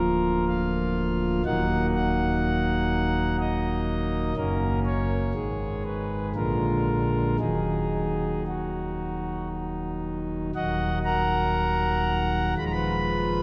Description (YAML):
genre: classical, chorale-style piece for pipe organ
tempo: 56-62 BPM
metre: 3/4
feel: rubato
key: Eb minor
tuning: A4 = 440 Hz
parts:
  - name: pipe organ, principal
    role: solo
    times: 0.0-13.4 s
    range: D1 to Cb6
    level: -26 LUFS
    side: equal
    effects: none
room: wet church reverb, RT60 2.8 s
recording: dark, warm production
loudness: -26 LUFS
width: mono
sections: 0.0-10.6 A section; 10.6-13.4 A section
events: none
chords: 0.0 Bb/D; 1.5 Ebm; 4.4 Gb; 5.4 Abm; 6.4 Bb7; 7.4 Ebm; 12.6 Fm7b5/Eb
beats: 0.48 | 1.46 2.43 3.40 | 4.37 5.36 6.37 | 7.41 8.47 9.52 | 10.55 11.57 12.59